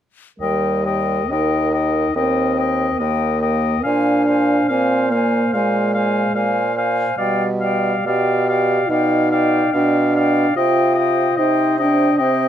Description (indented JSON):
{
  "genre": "classical, slow romantic movement for wind quintet",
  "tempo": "71 BPM",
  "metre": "4/4",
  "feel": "uneven beats, rubato",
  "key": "Eb major",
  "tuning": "A4 = 440 Hz",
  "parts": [
    { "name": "concert flute", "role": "melody", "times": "0.4-12.5 s", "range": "G5 to Ab5", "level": "-24 LUFS", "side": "left 9 dB", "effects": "none" },
    { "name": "clear oboe", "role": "second line", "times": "0.4-12.5 s", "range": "Eb5 to F5", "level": "-23 LUFS", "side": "left 5 dB", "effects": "none" },
    { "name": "mellow French horn", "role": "accompaniment", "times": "0.4-12.5 s", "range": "G3 to G4", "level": "-19 LUFS", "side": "equal", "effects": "none" },
    { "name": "mellow clarinet", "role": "accompaniment", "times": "0.4-12.5 s", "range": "Bb4 to D5", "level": "-26 LUFS", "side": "right 9 dB", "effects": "none" },
    { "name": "clear bassoon", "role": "bass", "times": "0.4-12.5 s", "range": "Eb2 to C3", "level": "-21 LUFS", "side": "right 3 dB", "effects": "none" }
  ],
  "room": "light reverb",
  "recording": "close, detailed microphones",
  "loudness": "-15 LUFS",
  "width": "side -10 dB against mid",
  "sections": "0.4-12.5 A section",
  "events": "none",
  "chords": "0.4 Eb; 3.9 Bb9; 7.2 G7/B; 10.6 Cm",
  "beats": "| 0.41 1.32 2.17 3.01 | 3.86 4.71 5.55 6.35 | 7.18 8.06 8.90 9.74 | 10.57 11.38 12.20"
}